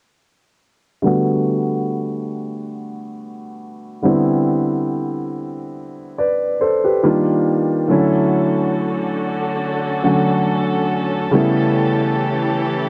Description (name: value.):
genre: R&B.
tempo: 70 BPM.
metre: 4/4.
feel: swing 54% on 16ths.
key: unclear.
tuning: A4 = 441 Hz.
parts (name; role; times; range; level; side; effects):
warm concert grand piano; accompaniment; 1.0-12.9 s; C#3 to D5; -20 LUFS; equal; low-pass filter, cassette tape.
muted studio string section; sustained chords; 7.9-12.9 s; D3 to A4; -24 LUFS; equal; low-pass filter, cassette tape.
room: moderate studio reverb, RT60 0.5 s.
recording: home recording on cassette.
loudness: -18 LUFS.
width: mono.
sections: 1.0-12.9 A section.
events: filter sweep 1.0-12.9.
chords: 1.0 Gmaj7; 4.0 Cmaj7; 7.0 Ebmaj7; 7.9 Dmaj7; 11.3 A7.